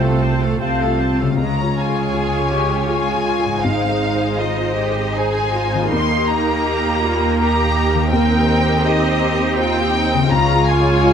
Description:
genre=cinematic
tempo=81 BPM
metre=3/4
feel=rubato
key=Db lydian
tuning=A4 = 441 Hz
part: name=muted symphonic violin section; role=melody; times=0.0-11.1 s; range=Eb5 to C6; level=-22 LUFS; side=left 3 dB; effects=none
part: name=muted symphonic violin section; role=second line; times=0.0-11.1 s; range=G3 to Db5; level=-24 LUFS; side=left 3 dB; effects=none
part: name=warm clarinet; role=second line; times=0.0-1.0 s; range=A3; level=-31 LUFS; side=right 1 dB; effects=none
part: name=dark baby grand piano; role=accompaniment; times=0.0-11.1 s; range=C2 to C5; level=-22 LUFS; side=equal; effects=none
part: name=muted symphonic viola section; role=accompaniment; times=0.0-11.1 s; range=Ab3 to C5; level=-24 LUFS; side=right 3 dB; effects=none
part: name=mellow French horn section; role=sustained chords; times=0.0-1.0 s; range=C4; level=-28 LUFS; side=left 3 dB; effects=none
part: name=concert harp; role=arpeggios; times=0.0-11.1 s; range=Ab2 to F5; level=-25 LUFS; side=left 7 dB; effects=none
part: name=muted symphonic cello section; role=bass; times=0.0-11.1 s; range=C3 to Bb4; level=-24 LUFS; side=right 4 dB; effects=none
part: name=muted symphonic double bass section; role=bass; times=0.0-11.1 s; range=Ab1 to Eb2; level=-22 LUFS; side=right 4 dB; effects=none
room=moderate scoring stage reverb, RT60 1.7 s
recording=close, detailed microphones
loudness=-15 LUFS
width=side -8 dB against mid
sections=0.0-1.4 A section; 1.4-11.1 B section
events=none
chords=0.0 F/C; 1.4 Db; 3.6 Ab; 5.9 Eb; 8.1 Cm7/Eb; 10.3 Db

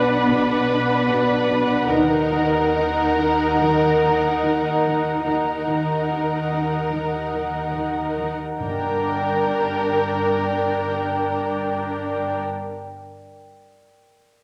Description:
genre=cinematic, suspense film score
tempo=72 BPM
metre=4/4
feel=straight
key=G harmonic minor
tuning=A4 = 440 Hz
part: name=muted symphonic violin section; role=melody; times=0.0-12.4 s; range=F#5 to G5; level=-32 LUFS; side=equal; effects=none
part: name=muted studio violin section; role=second line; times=0.0-12.4 s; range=Bb4 to B4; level=-25 LUFS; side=equal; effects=none
part: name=muted symphonic viola section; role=accompaniment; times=0.0-12.4 s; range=D4 to Eb4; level=-28 LUFS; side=equal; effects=none
part: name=glass harmonica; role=sustained chords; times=0.0-12.4 s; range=Bb4 to G5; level=-30 LUFS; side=equal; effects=none
part: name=muted symphonic cello section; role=riff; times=0.0-8.4 s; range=B2 to Eb4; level=-30 LUFS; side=equal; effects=none
part: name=muted symphonic cello section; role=bass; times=0.0-12.4 s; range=G2 to Eb3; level=-31 LUFS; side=equal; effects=none
part: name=muted symphonic double bass section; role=bass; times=0.0-12.4 s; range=G1 to Eb2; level=-36 LUFS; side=equal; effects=none
part: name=timpani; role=percussion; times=8.6-12.4 s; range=G2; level=-38 LUFS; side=equal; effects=none
room=wet recital hall reverb, RT60 1.6 s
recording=none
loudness=-21 LUFS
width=mono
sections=0.0-8.6 A section; 8.6-11.9 B section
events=none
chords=0.0 Bm; 1.9 Ebm; 8.6 Gm

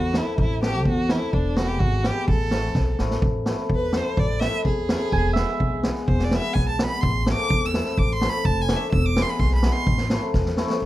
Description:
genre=klezmer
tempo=126 BPM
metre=2/4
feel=straight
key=A dorian, A harmonic minor from 3.2 s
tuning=A4 = 440 Hz
part: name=rich violin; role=melody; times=0.0-10.2 s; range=D4 to E6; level=-27 LUFS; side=right 1 dB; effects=none
part: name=upright bass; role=bass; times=0.0-10.9 s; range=E1 to E2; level=-25 LUFS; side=equal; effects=none
part: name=cimbalom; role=accompaniment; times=0.1-10.7 s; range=G#3 to G4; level=-28 LUFS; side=left 3 dB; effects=none
part: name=street-band drum kit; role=drums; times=0.1-10.8 s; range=kick drum, snare drum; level=-24 LUFS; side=equal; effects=none
part: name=clear clarinet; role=second line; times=5.1-5.9 s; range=E5 to G#5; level=-27 LUFS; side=right 6 dB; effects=none
room=light reverb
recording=close, detailed microphones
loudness=-20 LUFS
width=side -15 dB against mid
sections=0.0-3.2 A section; 3.2-10.8 B section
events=drum fill 2.8-3.2, 10.3-10.8; violin solo 3.2-10.8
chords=0.0 Am; 1.3 E; 2.3 Am; 5.1 E; 7.0 Am; 8.9 E; 9.9 Am

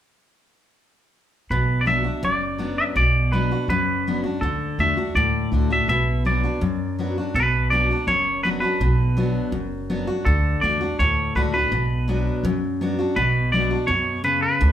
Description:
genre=honky-tonk and classic country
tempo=165 BPM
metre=4/4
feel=straight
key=B minor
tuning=A4 = 441 Hz
part: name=twangy electric guitar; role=melody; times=1.5-14.7 s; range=A4 to E5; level=-22 LUFS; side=equal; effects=none
part: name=picked steel-string acoustic guitar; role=accompaniment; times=1.5-14.7 s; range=F#2 to F#4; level=-24 LUFS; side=left 2 dB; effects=none
part: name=upright bass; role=bass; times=1.5-14.7 s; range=F#1 to F#2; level=-23 LUFS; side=right 1 dB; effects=none
room=wet large studio reverb, RT60 0.8 s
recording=band playing live in one room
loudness=-19 LUFS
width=side -10 dB against mid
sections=1.5-7.3 A section; 7.3-14.7 B section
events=none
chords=1.5 Bm; 4.4 D; 5.9 Bm; 10.3 D; 11.7 Bm

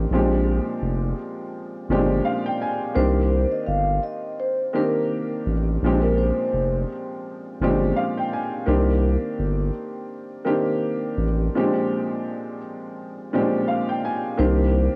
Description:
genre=hip hop, boom-bap hip-hop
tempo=84 BPM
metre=4/4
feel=swing 56% on 16ths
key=unclear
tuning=A4 = 440 Hz
part: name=dark baby grand piano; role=accompaniment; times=0.0-15.0 s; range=Bb2 to Ab5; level=-26 LUFS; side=equal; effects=high-pass filter, low-pass filter, cassette tape
part: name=saturated sub bass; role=bass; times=0.0-14.9 s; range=F1 to C2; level=-24 LUFS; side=equal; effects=none
part: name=vibraphone with soft mallets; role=melody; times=3.0-6.7, 14.4-14.9 s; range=Bb4 to F5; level=-28 LUFS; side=equal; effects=high-pass filter, low-pass filter, cassette tape, tape echo
room=moderate booth ambience, RT60 0.2 s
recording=home recording on cassette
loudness=-23 LUFS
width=mono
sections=0.0-14.4 A section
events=none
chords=0.1 Bb13; 3.0 Cm7; 5.8 Bb13; 8.7 Cm7; 11.5 Bb13; 14.4 Cm7

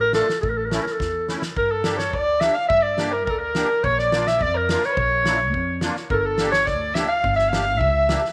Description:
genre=klezmer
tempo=106 BPM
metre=2/4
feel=straight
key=unclear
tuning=A4 = 443 Hz
part: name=clear clarinet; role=melody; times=0.0-8.2 s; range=A4 to F5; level=-23 LUFS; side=equal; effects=tape echo
part: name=upright bass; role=bass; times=0.0-8.1 s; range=G1 to G2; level=-31 LUFS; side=equal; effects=none
part: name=musette accordion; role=accompaniment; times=0.1-8.2 s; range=A3 to G4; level=-33 LUFS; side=equal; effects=none
part: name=loose indie drum kit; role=drums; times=0.1-8.3 s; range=kick drum, snare drum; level=-31 LUFS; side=equal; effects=none
part: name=dark violin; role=second line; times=1.6-8.2 s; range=A4 to F5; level=-30 LUFS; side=equal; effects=none
room=moderate plate reverb, RT60 1.3 s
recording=none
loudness=-21 LUFS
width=mono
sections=0.0-1.6 A section; 1.6-8.3 B section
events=drum fill 1.0-1.6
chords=0.4 A; 1.6 Gm; 3.8 Bb; 6.1 Gm

